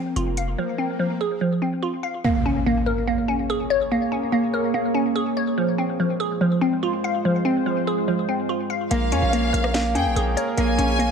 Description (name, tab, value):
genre	hip hop, trap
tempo	144 BPM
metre	4/4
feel	half-time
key	Bb minor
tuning	A4 = 440 Hz
part	glassy wavetable pluck	arpeggios	0.0-11.1 s	F3 to F5	-22 LUFS	equal	chorus, ping-pong delay
part	swell and impact	sound effects	0.2-3.9 s	none	-28 LUFS	equal	none
part	hard-hitting 808-style bass	bass	0.2-0.6, 8.9-11.1 s	F1 to F2	-24 LUFS	equal	none
part	trap drum kit	drums	0.2-0.5, 8.9-11.1 s	hi-hat, rim click, snare drum	-30 LUFS	equal	vintage 12-bit sampler grit
part	deep dark ambient pad	sustained chords	3.1-11.1 s	Ab3 to Db5	-27 LUFS	right 1 dB	chorus, built-in reverb
part	warm studio violin section	second line	8.9-11.1 s	F5 to Ab5	-26 LUFS	equal	ping-pong delay
part	clear concert grand piano	accompaniment	8.9-11.1 s	Bb3 to Bb4	-26 LUFS	equal	none
room	light reverb, digital ambience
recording	none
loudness	-20 LUFS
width	side -6 dB against mid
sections	0.0-2.2 A section; 2.2-11.1 B section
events	swell 0.2-2.2; impact 2.2-3.9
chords	0.0 Fm; 2.2 Bbm7; 5.6 Fm; 8.9 Bbm7